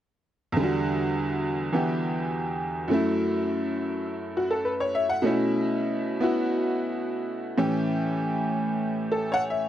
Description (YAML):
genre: solo jazz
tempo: 103 BPM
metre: 4/4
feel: swing 67% on 8ths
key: unclear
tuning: A4 = 440 Hz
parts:
  - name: tack piano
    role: solo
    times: 0.5-9.7 s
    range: E2 to F#5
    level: -24 LUFS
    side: equal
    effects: none
room: moderate booth ambience, RT60 0.2 s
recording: dark, warm production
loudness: -24 LUFS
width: side -11 dB against mid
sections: 0.6-9.7 A section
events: none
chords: 0.6 Em9; 2.9 F#m7; 5.2 B9sus4; 7.6 A7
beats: | 0.57 1.16 1.74 2.33 | 2.91 3.49 4.08 4.66 | 5.24 5.83 6.41 6.99 | 7.57 8.16 8.74 9.32